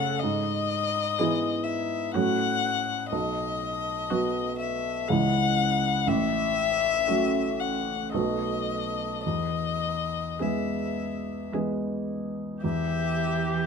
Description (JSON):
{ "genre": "classical, slow romantic movement for piano quartet", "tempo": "51-64 BPM", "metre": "3/4", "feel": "rubato", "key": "E major", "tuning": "A4 = 439 Hz", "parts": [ { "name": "dark violin", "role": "melody", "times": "0.0-13.7 s", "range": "D#5 to F#5", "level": "-28 LUFS", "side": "left 8 dB", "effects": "none" }, { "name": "rich cello", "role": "second line", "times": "0.0-13.7 s", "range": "C#3 to F#3", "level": "-34 LUFS", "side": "right 10 dB", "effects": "none" }, { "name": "rich viola", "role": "accompaniment", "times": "0.0-13.7 s", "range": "F#4 to A4", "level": "-36 LUFS", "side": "right 1 dB", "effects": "none" }, { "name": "warm baby grand piano", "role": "accompaniment", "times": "0.0-13.7 s", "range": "A1 to A4", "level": "-28 LUFS", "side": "right 1 dB", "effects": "none" } ], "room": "light reverb", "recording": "dark, warm production", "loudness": "-25 LUFS", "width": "side -6 dB against mid", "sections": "0.0-12.6 A section; 12.6-13.7 B section", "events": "none", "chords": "0.2 E/G#; 2.1 F#m/A; 3.1 B; 5.1 C#m; 6.1 F#m/A; 8.1 B7; 9.2 E; 12.6 Em", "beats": "| 0.21 1.18 2.14 | 3.12 4.10 5.08 | 6.07 7.06 8.12 | 9.23 10.39 11.52 | 12.63" }